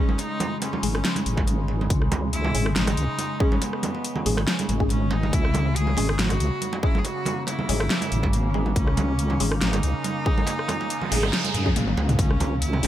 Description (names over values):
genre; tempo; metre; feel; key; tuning
deep dubstep; 140 BPM; 4/4; swing 54% on 16ths, half-time; C# dorian; A4 = 440 Hz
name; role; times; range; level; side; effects
clear cello; melody; 0.0-12.9 s; A#3 to G#4; -31 LUFS; equal; dub echo
overtone-sweeping drone; sustained chords; 0.0-12.9 s; C#3 to A#3; -31 LUFS; equal; chorus, built-in reverb
filtered dub chord stab; stabs; 0.0-12.9 s; G#3 to G#4; -33 LUFS; left 1 dB; none
congas; percussion; 0.1-12.9 s; none; -30 LUFS; right 4 dB; none
dubstep drum kit; drums; 0.2-12.9 s; hi-hat, rim click, snare drum, toms; -28 LUFS; left 1 dB; none
wobble bass; bass; 0.8-12.9 s; G#1 to F#2; -24 LUFS; equal; chorus
electronic kick drum; drums; 1.4-12.3 s; none; -23 LUFS; equal; none
noise sweep; sound effects; 10.9-12.2 s; none; -32 LUFS; right 3 dB; none
room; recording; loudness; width
little or no reverb; none; -21 LUFS; side -12 dB against mid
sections
0.0-12.9 A section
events
noise sweep 10.9-12.2; drum fill 11.8-12.2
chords
0.0 C#5